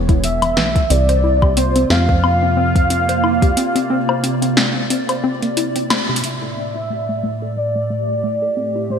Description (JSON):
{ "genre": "IDM", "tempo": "90 BPM", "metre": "4/4", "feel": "swing 56% on 16ths", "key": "A phrygian", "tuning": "A4 = 440 Hz", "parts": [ { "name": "hollow soft pad", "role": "sustained chords", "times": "0.0-9.0 s", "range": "A2 to D5", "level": "-23 LUFS", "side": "right 2 dB", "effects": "ensemble chorus, sidechain pumping" }, { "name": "deep acid bass", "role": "bass", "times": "0.0-3.6 s", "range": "E1 to F2", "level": "-18 LUFS", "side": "equal", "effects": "none" }, { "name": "warbly dusty pluck", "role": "arpeggios", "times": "0.1-9.0 s", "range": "C3 to C5", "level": "-22 LUFS", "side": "left 2 dB", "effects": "chorus, ping-pong delay" }, { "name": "electro analog drum machine", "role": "drums", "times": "0.1-6.4 s", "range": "hi-hat, snare drum, woodblock", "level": "-20 LUFS", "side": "left 1 dB", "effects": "gated reverb" }, { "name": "electronic kick drum", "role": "drums", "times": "0.1-3.5 s", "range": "none", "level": "-15 LUFS", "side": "equal", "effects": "none" }, { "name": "warm velvety synth lead", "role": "melody", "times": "0.2-9.0 s", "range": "C5 to F5", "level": "-20 LUFS", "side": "equal", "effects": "chorus, vintage 12-bit sampler grit, digital delay" } ], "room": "moderate lush hall reverb, RT60 2.9 s", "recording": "bright 1980s-style digital production", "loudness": "-15 LUFS", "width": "side -7 dB against mid", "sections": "0.0-6.2 A section; 6.2-9.0 B section", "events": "break 3.6-6.2; drum fill 5.9-6.2; band accent 5.9-6.2; filter sweep on synth arpeggio sound 6.2-9.0", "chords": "0.0 E6; 0.9 C9sus4; 6.2 A7(no3)" }